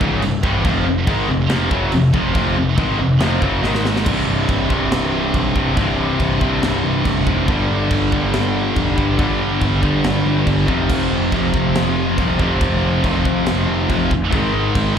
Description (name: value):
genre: heavy metal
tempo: 140 BPM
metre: 4/4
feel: straight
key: C minor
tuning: A4 = 442 Hz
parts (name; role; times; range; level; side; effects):
- cranked stack guitar; riff; 0.0-15.0 s; C2 to Ab3; -22 LUFS; right 1 dB; overdrive
- heavy high-gain guitar; riff; 0.0-15.0 s; C2 to Ab3; -23 LUFS; right 9 dB; distortion, slapback echo
- tight distorted guitar; riff; 0.0-15.0 s; C2 to Ab3; -21 LUFS; left 9 dB; distortion, slapback echo
- fuzz picked electric bass; bass; 0.0-15.0 s; C1 to G2; -22 LUFS; right 1 dB; overdrive
- tight metal drum kit; drums; 0.0-14.9 s; china cymbal, crash cymbal, kick drum, snare drum; -22 LUFS; equal; none
room: studio reverb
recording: live gig heard through the venue's PA, club reverb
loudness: -15 LUFS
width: side -8 dB against mid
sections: 0.0-4.1 A section; 4.1-15.0 B section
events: drum fill 3.6-4.1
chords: 0.0 C5; 0.6 F5; 3.6 Ab5; 4.1 C5; 7.5 G5; 10.7 F5; 14.3 Ab5